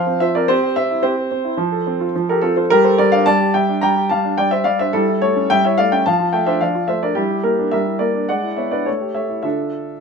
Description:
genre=classical-period piano sonatina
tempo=107 BPM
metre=4/4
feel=straight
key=D minor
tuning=A4 = 440 Hz
part: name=clear baby grand piano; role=solo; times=0.0-10.0 s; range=D3 to Bb5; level=-15 LUFS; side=equal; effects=none
room=moderate stone room reverb, RT60 0.9 s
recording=minimal, uncompressed stereo recording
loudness=-15 LUFS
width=side -5 dB against mid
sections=0.0-10.0 A section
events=none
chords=0.5 C; 1.6 F; 2.7 Gm; 4.9 A7/G; 6.0 Dm/F; 7.2 Em7b5/G; 8.3 E7/G#; 8.9 A7; 9.4 Dm

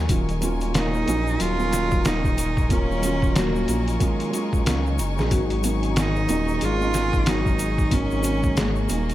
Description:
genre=trip hop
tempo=92 BPM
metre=4/4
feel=swing 59% on 16ths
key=Eb minor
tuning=A4 = 440 Hz
part: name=felt-muted upright piano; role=accompaniment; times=0.0-9.1 s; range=Gb3 to Ab4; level=-28 LUFS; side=right 2 dB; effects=tremolo
part: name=rich studio violin section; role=sustained chords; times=0.0-9.1 s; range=Eb4 to Db6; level=-33 LUFS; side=left 3 dB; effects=none
part: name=nylon-string guitar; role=arpeggios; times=0.0-8.9 s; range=Eb3 to Bb3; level=-31 LUFS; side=left 1 dB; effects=tape echo
part: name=dark detuned saw bass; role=bass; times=0.0-9.1 s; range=Eb1 to Db2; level=-25 LUFS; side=equal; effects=none
part: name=trip hop sampler-style drum kit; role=drums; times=0.1-9.1 s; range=hi-hat, kick drum, snare drum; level=-24 LUFS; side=equal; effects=none
part: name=egg shaker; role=percussion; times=0.1-9.1 s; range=none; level=-36 LUFS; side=left 1 dB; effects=none
part: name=rich cello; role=melody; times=0.8-9.1 s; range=Ab3 to F4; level=-27 LUFS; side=right 1 dB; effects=tape echo
room=small room ambience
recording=none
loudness=-20 LUFS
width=side -14 dB against mid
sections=0.0-9.1 A section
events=none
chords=0.1 Ebm7; 5.3 Ab7sus4

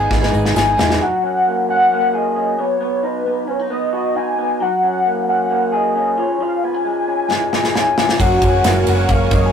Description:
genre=jangly indie pop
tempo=134 BPM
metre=4/4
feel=straight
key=F# major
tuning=A4 = 439 Hz
part: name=picked plugged-in twelve-string acoustic guitar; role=accompaniment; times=0.0-1.0, 8.2-9.5 s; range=F#2 to G#4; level=-20 LUFS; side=right 2 dB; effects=none
part: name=electric guitar through a small old amp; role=arpeggios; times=0.0-9.5 s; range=E#3 to G#4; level=-19 LUFS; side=equal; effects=none
part: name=vintage muted fingered electric bass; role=bass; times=0.0-1.0, 8.2-9.5 s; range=E1 to G#1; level=-18 LUFS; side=right 1 dB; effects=none
part: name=modern studio drum kit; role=drums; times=0.1-1.0, 7.3-9.4 s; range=kick drum, ride cymbal, snare drum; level=-18 LUFS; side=equal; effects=none
part: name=tambourine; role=percussion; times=0.3-0.9, 8.2-9.4 s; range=none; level=-36 LUFS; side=left 3 dB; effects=none
part: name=warm velvety synth lead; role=melody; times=0.6-9.5 s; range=B4 to G#5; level=-19 LUFS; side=left 2 dB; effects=chorus
part: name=string machine, cellos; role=sustained chords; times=8.2-9.5 s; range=F#4 to C#6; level=-26 LUFS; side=equal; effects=ensemble chorus
room=wet booth ambience, RT60 0.3 s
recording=rough rehearsal-room recording, warm saturation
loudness=-14 LUFS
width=side -7 dB against mid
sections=0.0-1.0 A section; 1.0-9.5 B section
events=drum fill 0.1-1.0, 7.3-8.2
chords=0.0 G#m; 1.0 F#add9; 2.6 B; 4.6 F#add9; 6.2 C#; 8.2 F#add9

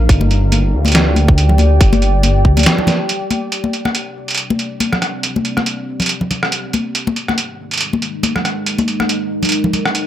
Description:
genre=deep dubstep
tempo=140 BPM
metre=4/4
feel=swing 56% on 16ths, half-time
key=C minor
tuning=A4 = 436 Hz
part: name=deep dark ambient pad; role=sustained chords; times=0.0-10.1 s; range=Ab3 to G5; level=-22 LUFS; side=equal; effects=chorus, built-in reverb
part: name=dark detuned saw bass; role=bass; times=0.0-2.7 s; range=G1 to D2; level=-12 LUFS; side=equal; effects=none
part: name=electronic kick drum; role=drums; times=0.1-2.5 s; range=none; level=-10 LUFS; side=equal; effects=none
part: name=trip hop sampler-style drum kit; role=drums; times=0.1-10.0 s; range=hi-hat, rim click, snare drum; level=-18 LUFS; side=right 1 dB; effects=overdrive
part: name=congas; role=percussion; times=0.2-9.8 s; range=none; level=-20 LUFS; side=left 3 dB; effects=dub echo
room=light reverb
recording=none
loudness=-13 LUFS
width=side -12 dB against mid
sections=0.0-3.5 A section; 3.5-10.1 B section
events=break 2.7-3.5; filter sweep on ambient pad 3.5-10.1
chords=0.1 G5; 3.5 Csus2; 7.0 Absus2

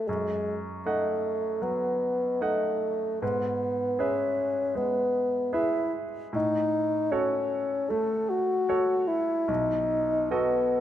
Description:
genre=classical, romantic duo for bassoon and grand piano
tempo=76 BPM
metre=4/4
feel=uneven beats, rubato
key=E major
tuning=A4 = 440 Hz
part: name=dark bassoon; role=melody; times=0.0-10.8 s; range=G#3 to A4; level=-26 LUFS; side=left 1 dB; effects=none
part: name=bright grand piano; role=accompaniment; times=0.0-10.8 s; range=B1 to F#5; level=-32 LUFS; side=right 2 dB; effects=none
room=moderate recital hall reverb, RT60 1.8 s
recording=close, detailed microphones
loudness=-25 LUFS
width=side -11 dB against mid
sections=0.0-10.8 A section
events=none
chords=0.1 D#dim/F#; 3.2 E/G#; 6.3 F#m/A; 9.5 B7

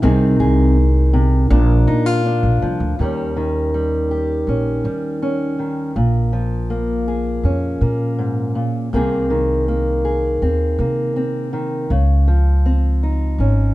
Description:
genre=acoustic folk duo or small band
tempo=81 BPM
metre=4/4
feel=straight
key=Eb mixolydian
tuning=A4 = 441 Hz
part: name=fingerpicked old ladder-braced acoustic guitar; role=accompaniment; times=0.0-13.7 s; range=Eb2 to Ab4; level=-19 LUFS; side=left 1 dB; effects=none
part: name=upright bass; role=bass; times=0.0-13.7 s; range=Ab1 to Eb3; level=-18 LUFS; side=equal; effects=none
room=moderate studio ambience, RT60 0.5 s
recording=dark, warm production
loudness=-15 LUFS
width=side -17 dB against mid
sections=0.0-3.0 A section; 3.0-13.7 B section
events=none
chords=0.0 Ab/C; 1.5 Bb; 3.0 Eb7; 6.0 Bbm7; 8.9 Abadd9/C; 11.9 Dbmaj7

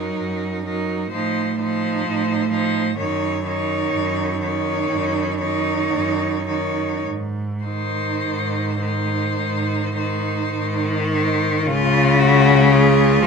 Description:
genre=classical, lyrical piece for cello ensemble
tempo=50-65 BPM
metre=4/4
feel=rubato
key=Db major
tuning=A4 = 440 Hz
part: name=rich cello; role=melody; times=0.0-13.3 s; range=F4 to Db5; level=-25 LUFS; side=left 6 dB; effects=none
part: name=rich cello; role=second line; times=0.0-13.3 s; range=Eb4 to Ab4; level=-25 LUFS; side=right 8 dB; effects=none
part: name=clear cello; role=accompaniment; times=0.0-13.3 s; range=Db3 to Gb3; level=-21 LUFS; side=left 3 dB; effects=none
part: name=rich cello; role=bass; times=0.0-13.3 s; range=Db2 to A2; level=-25 LUFS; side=right 3 dB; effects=none
room=light reverb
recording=minimal, uncompressed stereo recording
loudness=-18 LUFS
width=side -5 dB against mid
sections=0.0-11.7 A section; 11.7-13.3 B section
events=none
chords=0.0 Ebm/Gb; 1.1 F7/A; 3.0 Ebm7/Gb; 7.1 Ab; 11.7 Db

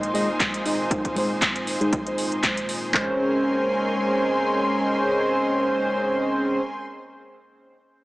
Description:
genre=deep house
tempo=118 BPM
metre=4/4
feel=swing 55% on 16ths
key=Bb minor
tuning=A4 = 439 Hz
part: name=warbly tape-like pad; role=sustained chords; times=0.0-6.6 s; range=Bb2 to C5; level=-33 LUFS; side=right 1 dB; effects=none
part: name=chorused polysynth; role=stabs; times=0.0-6.6 s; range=Ab3 to Eb5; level=-23 LUFS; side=equal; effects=sidechain pumping, tape echo
part: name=house drum kit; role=drums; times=0.0-2.8 s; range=handclaps, hi-hat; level=-26 LUFS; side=equal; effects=small room ambience
part: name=rich symphonic string section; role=texture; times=0.0-6.8 s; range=Bb3 to C6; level=-28 LUFS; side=equal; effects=sidechain pumping
part: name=punchy analog drum machine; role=drums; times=0.4-3.1 s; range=handclaps, kick drum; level=-26 LUFS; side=equal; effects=small room ambience
part: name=congas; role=percussion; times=0.4-2.5 s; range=none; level=-36 LUFS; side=left 1 dB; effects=none
room=moderate plate reverb, RT60 1.9 s, digital ambience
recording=small speaker sound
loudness=-21 LUFS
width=side -19 dB against mid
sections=0.0-2.9 A section; 2.9-7.0 B section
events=filter sweep on analog polysynth 0.0-2.9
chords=0.0 Ab; 2.9 Bbm9

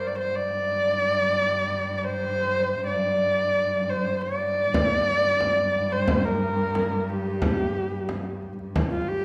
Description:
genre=mongolian traditional, Mongolian folk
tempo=89 BPM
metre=4/4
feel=straight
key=G yu mode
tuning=A4 = 437 Hz
part: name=warm horsehead fiddle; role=melody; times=0.0-9.2 s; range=F4 to D5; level=-26 LUFS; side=equal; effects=none
part: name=rich cello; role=drone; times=0.0-9.2 s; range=G2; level=-33 LUFS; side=equal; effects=none
part: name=frame drum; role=percussion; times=4.7-8.9 s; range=none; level=-30 LUFS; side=equal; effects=none
room=wet recital hall reverb, RT60 1.3 s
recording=lossy compression artefacts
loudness=-25 LUFS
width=mono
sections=0.0-9.2 A section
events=none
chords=none

